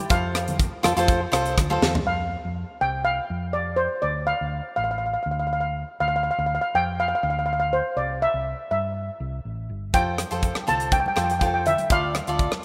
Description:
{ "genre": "calypso", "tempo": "122 BPM", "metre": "4/4", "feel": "straight", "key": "F major", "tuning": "A4 = 442 Hz", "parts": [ { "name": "steel pan", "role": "melody", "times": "0.0-12.6 s", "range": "C5 to A5", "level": "-26 LUFS", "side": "equal", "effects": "none" }, { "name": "congas", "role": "percussion", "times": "0.0-2.1, 10.2-12.6 s", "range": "none", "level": "-38 LUFS", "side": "equal", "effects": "none" }, { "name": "cavaquinho", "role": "accompaniment", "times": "0.1-1.9, 9.9-12.5 s", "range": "F4 to D5", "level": "-29 LUFS", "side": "equal", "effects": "none" }, { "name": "hollow-body short-scale fingered electric bass", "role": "bass", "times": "0.1-12.5 s", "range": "G1 to G2", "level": "-32 LUFS", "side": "equal", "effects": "none" }, { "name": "tight metal drum kit", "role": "drums", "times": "0.1-2.1, 9.9-12.6 s", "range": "hi-hat, kick drum, rim click, snare drum, toms", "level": "-27 LUFS", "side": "equal", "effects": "none" } ], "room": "moderate lush hall reverb, RT60 2.5 s", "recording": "rough home demo mix", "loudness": "-24 LUFS", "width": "mono", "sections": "0.0-2.1 A section; 2.1-12.6 B section", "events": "drum fill 1.8", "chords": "0.1 F; 2.1 F5; 4.0 Dm; 8.0 C; 9.9 Fadd9; 11.9 Dm", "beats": "| 0.10 0.59 1.08 1.57 | 2.06 2.56 3.05 3.54 | 4.03 4.53 5.02 5.51 | 6.00 6.50 6.99 7.48 | 7.97 8.46 8.96 9.45 | 9.94 10.43 10.92 11.41 | 11.91 12.40" }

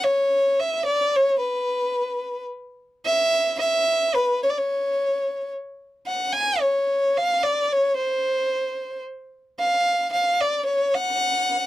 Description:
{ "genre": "mexican folk", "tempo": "110 BPM", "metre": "3/4", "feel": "straight", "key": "unclear", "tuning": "A4 = 440 Hz", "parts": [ { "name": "rich violin", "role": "solo", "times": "0.0-11.7 s", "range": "B4 to G#5", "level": "-20 LUFS", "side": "equal", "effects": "none" } ], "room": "light reverb", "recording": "dry, close 1970s-style studio recording", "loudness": "-20 LUFS", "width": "side -15 dB against mid", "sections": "0.0-11.7 A section", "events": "none", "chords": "none", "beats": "0.30 0.85 | 1.40 1.94 2.49 | 3.03 3.57 4.11 | 4.66 5.21 5.76 | 6.32 6.87 7.42 | 7.97 8.52 9.06 | 9.61 10.15 10.70 | 11.24" }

